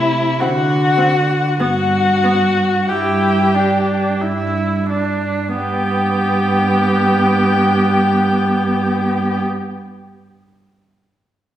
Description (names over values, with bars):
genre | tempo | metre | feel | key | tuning
classical, slow romantic movement for string quartet | 43-57 BPM | 3/4 | rubato | G major | A4 = 440 Hz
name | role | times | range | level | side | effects
muted violin | melody | 0.0-9.4 s | E5 to G5 | -24 LUFS | left 6 dB | none
muted violin | second line | 0.0-9.4 s | E4 to G4 | -18 LUFS | left 1 dB | none
muted cello | bass | 0.0-9.4 s | G2 to D3 | -18 LUFS | right 2 dB | none
muted viola | accompaniment | 0.4-9.4 s | B3 to E4 | -21 LUFS | right 1 dB | none
room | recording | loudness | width
wet recital hall reverb, RT60 1.6 s | heard from further back in the room | -14 LUFS | side -11 dB against mid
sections
0.0-5.6 A section; 5.6-9.4 B section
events
slowing down 0.0-5.6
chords
0.4 D7; 1.6 G5; 5.6 G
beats
0.41 | 1.59 2.88 4.21 | 5.57 6.84 8.13